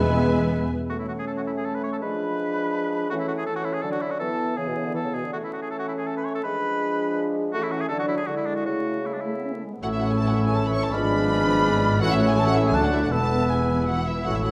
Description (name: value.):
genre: quick classical-period movement for symphony orchestra.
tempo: 162 BPM.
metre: 3/4.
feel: rubato.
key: A major.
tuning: A4 = 440 Hz.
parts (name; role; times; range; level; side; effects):
rich studio violin section; melody; 0.0-0.7, 9.8-14.5 s; E5 to C#6; -31 LUFS; equal; none.
clear oboe; second line; 0.0-14.5 s; D4 to D5; -34 LUFS; equal; none.
hollow concert flute; second line; 0.0-14.5 s; B4 to F#6; -37 LUFS; equal; none.
rich studio violin section; second line; 0.0-0.5, 9.8-14.5 s; B3 to B4; -37 LUFS; equal; none.
clear bassoon; accompaniment; 0.0-14.5 s; B2 to B3; -31 LUFS; equal; none.
warm studio viola section; accompaniment; 0.0-0.7, 9.8-14.5 s; D3 to E5; -36 LUFS; equal; none.
warm French horn section; sustained chords; 0.0-14.5 s; E3 to E4; -30 LUFS; equal; none.
dark trumpet; stabs; 0.0-0.5, 9.8-14.5 s; E4 to C#5; -34 LUFS; equal; none.
rich studio cello section; bass; 0.0-0.5, 9.8-14.5 s; D2 to B3; -32 LUFS; equal; none.
warm studio double bass section; bass; 0.0-0.7, 9.8-14.5 s; E1 to E2; -28 LUFS; equal; none.
room: wet recital hall reverb, RT60 1.3 s.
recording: dark, warm production, vinyl crackle.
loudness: -24 LUFS.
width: mono.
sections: 0.9-9.8 A section; 9.8-14.5 A section.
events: none.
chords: 0.0 E; 0.9 A; 2.0 G#dim7/E#; 3.1 A/E; 3.8 D; 4.2 E; 5.3 A/E; 6.4 G#dim7/E#; 7.5 A/E; 7.9 D; 8.3 E7/D; 8.7 A/C#; 9.8 A; 10.9 G#dim7; 12.0 A; 12.8 D; 13.1 E.